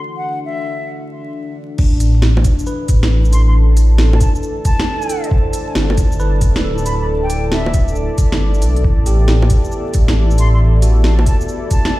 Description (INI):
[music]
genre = future garage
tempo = 136 BPM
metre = 4/4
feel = swing 66% on 16ths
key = unclear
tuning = A4 = 440 Hz
[part]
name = tine electric piano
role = accompaniment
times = 0.0-12.0 s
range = D4 to C5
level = -27 LUFS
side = right 2 dB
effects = medium stereo tremolo, vintage 12-bit sampler grit, sidechain pumping, ping-pong delay
[part]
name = dark analog pad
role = sustained chords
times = 0.0-12.0 s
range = B3 to A5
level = -24 LUFS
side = left 2 dB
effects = chorus, sidechain pumping
[part]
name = reedy concert flute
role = melody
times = 0.2-12.0 s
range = E5 to C6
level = -26 LUFS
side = left 1 dB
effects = digital delay
[part]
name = dark detuned saw bass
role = bass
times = 1.8-11.3 s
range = D1 to B1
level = -12 LUFS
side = equal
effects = tube saturation, sidechain pumping
[part]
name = electronic kick drum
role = drums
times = 1.8-11.8 s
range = none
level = -14 LUFS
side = equal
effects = none
[part]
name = organic electronic drum kit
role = drums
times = 1.8-11.9 s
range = bongos, crash cymbal, hi-hat, shaker, snare drum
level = -22 LUFS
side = right 1 dB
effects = none
[sound]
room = digital ambience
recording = played on a big sound system in a bare room, large studio reverb, vinyl crackle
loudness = -12 LUFS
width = side -17 dB against mid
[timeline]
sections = 0.0-1.8 A section; 1.8-12.0 B section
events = none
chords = 0.0 D; 1.8 A5; 5.3 G; 8.8 A5